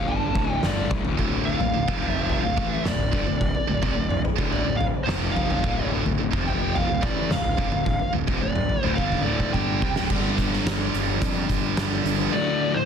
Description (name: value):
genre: quiet-loud alternative rock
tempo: 108 BPM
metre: 4/4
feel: straight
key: D minor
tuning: A4 = 440 Hz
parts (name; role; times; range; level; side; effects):
- fuzz lead guitar; melody; 0.0-12.9 s; C5 to A5; -28 LUFS; equal; distortion
- electric guitar at the edge of break-up; arpeggios; 0.0-1.2 s; D2 to F4; -35 LUFS; right 4 dB; tremolo
- fuzz guitar; riff; 0.0-12.9 s; D2 to G4; -29 LUFS; left 9 dB; distortion
- fuzz picked electric bass; bass; 0.0-12.3 s; D1 to F2; -29 LUFS; right 1 dB; overdrive
- oversized low-tuned drum kit; drums; 0.1-12.2 s; crash cymbal, hi-hat, kick drum, snare drum, toms; -26 LUFS; equal; soft clipping on snare
- heavy high-gain guitar; riff; 1.2-12.3 s; D2 to A3; -29 LUFS; right 15 dB; distortion
- string machine, cellos; sustained chords; 12.3-12.9 s; D3 to F4; -32 LUFS; right 5 dB; phaser, ensemble chorus
room: light reverb, studio reverb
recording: dense, heavily limited modern master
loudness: -21 LUFS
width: side -7 dB against mid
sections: 0.0-10.1 A section; 10.1-12.3 B section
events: lead electric guitar solo 0.0-10.1; drum fill 9.0-10.1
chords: 0.0 Dm; 1.9 F5; 2.4 Dm; 5.1 F5; 5.6 Dm; 6.3 F5; 6.9 Dm; 10.1 G5; 12.3 Dm